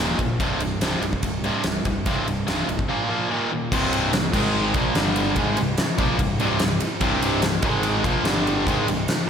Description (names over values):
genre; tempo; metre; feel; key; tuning
hard rock; 145 BPM; 4/4; straight; C minor; A4 = 441 Hz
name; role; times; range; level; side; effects
distorted electric guitar; riff; 0.0-9.1 s; C2 to Bb3; -26 LUFS; right 8 dB; overdrive
tight distorted guitar; riff; 0.0-9.0 s; C2 to Bb3; -27 LUFS; left 8 dB; distortion, slapback echo
fuzz picked electric bass; bass; 0.0-9.1 s; C1 to Bb1; -29 LUFS; equal; overdrive
huge arena drum kit; drums; 0.2-9.2 s; crash cymbal, kick drum, ride cymbal, snare drum; -24 LUFS; equal; none
crunchy overdriven guitar; riff; 3.7-9.3 s; C2 to Bb3; -26 LUFS; left 1 dB; slapback echo
room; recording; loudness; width
moderate concert hall reverb, RT60 2.4 s; big arena sound; -20 LUFS; side -7 dB against mid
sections
0.0-3.7 A section; 3.7-9.3 B section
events
none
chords
0.0 Eb5; 0.4 C5; 2.9 Bb5; 3.3 Eb5; 3.7 C5; 4.3 Ab5; 4.8 Bb5; 5.0 G5; 5.4 Cm; 7.6 Ab5; 8.1 Bb5; 8.3 G5; 8.7 Cm